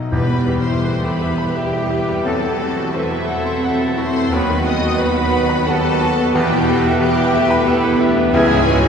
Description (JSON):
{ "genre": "classical, romantic movement for piano and orchestra", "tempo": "78-94 BPM", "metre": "3/4", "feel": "rubato", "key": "E minor", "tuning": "A4 = 440 Hz", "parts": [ { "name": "bright grand piano", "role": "melody", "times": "0.0-8.9 s", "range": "B1 to C6", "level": "-20 LUFS", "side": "left 1 dB", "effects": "none" }, { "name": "warm symphonic violin section", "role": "melody", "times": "0.0-8.9 s", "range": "E5 to D#6", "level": "-26 LUFS", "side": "left 2 dB", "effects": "none" }, { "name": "bright clarinet", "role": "second line", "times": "0.1-8.6 s", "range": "B3 to E4", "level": "-32 LUFS", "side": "left 2 dB", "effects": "none" }, { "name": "bright symphonic violin section", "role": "second line", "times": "0.1-8.9 s", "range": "E4 to D#5", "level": "-28 LUFS", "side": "left 1 dB", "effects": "none" }, { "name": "mellow flute section", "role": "second line", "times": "0.1-8.9 s", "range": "E4 to D#5", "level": "-26 LUFS", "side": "equal", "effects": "none" }, { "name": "warm oboe", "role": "second line", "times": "0.1-8.6 s", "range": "G4 to B4", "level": "-33 LUFS", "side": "right 2 dB", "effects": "none" }, { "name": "rich symphonic viola section", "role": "accompaniment", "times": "0.1-8.9 s", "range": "G3 to A4", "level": "-22 LUFS", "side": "equal", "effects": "none" }, { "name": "warm bassoon", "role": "accompaniment", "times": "0.1-8.6 s", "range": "E3 to F#3", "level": "-31 LUFS", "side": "equal", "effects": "none" }, { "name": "clear trombone section", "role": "sustained chords", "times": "0.1-8.9 s", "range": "D#3 to B3", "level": "-27 LUFS", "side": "right 3 dB", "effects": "none" }, { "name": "warm French horn section", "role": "sustained chords", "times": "0.1-8.9 s", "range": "B3 to F#4", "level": "-26 LUFS", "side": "left 1 dB", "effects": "none" }, { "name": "clear trumpet section", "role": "stabs", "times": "0.1-8.9 s", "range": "G4 to E5", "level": "-28 LUFS", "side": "right 2 dB", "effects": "none" }, { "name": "rich studio double bass section", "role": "bass", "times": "0.1-8.9 s", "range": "C#2 to E2", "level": "-24 LUFS", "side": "right 1 dB", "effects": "none" }, { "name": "timpani", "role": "percussion", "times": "0.1-1.2 s", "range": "E2", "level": "-26 LUFS", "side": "left 1 dB", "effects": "none" }, { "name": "rich symphonic cello section", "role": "bass", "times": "0.9-8.9 s", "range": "E4 to B4", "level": "-27 LUFS", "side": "right 2 dB", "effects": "none" } ], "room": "wet cathedral reverb, RT60 5.8 s", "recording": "heard from further back in the room, nothing above 10.9 kHz", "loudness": "-14 LUFS", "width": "side -6 dB against mid", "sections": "0.1-8.9 A section", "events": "none", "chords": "0.1 Em; 2.3 F#m7b5/E; 4.3 B/D#; 6.4 Em; 8.3 C#m", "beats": "| 0.12 0.84 1.54 | 2.25 2.94 3.64 | 4.34 5.00 5.67 | 6.35 7.01 7.69 | 8.34" }